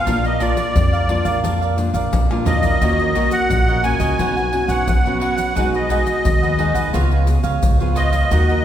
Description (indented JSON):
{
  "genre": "samba and choro",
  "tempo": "87 BPM",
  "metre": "4/4",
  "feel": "straight",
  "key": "unclear",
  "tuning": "A4 = 440 Hz",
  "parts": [
    { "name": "musette accordion", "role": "melody", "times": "0.0-8.6 s", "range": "D5 to Ab5", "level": "-21 LUFS", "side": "equal", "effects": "none" },
    { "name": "cavaquinho", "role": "accompaniment", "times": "0.0-8.6 s", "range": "D4 to F#5", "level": "-25 LUFS", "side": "right 3 dB", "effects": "none" },
    { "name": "nylon-string guitar", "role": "accompaniment", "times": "0.0-8.6 s", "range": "F2 to Ab4", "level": "-23 LUFS", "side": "equal", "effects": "none" },
    { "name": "upright bass", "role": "bass", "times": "0.1-8.6 s", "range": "Bb1 to B2", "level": "-20 LUFS", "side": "equal", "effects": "none" },
    { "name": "egg shaker, surdo, pandeiro and tamborim", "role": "percussion", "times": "0.1-8.6 s", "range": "none", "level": "-21 LUFS", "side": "equal", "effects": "none" }
  ],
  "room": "wet scoring stage reverb, RT60 2.0 s",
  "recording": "recorded in a church or concert hall",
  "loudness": "-15 LUFS",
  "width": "side -10 dB against mid",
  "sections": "0.0-8.6 A section",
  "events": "drum fill 2.1-2.8",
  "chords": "0.1 Bb; 2.8 Ebm7; 4.2 Bsus2; 5.6 Abm7/Cb; 6.9 Db7"
}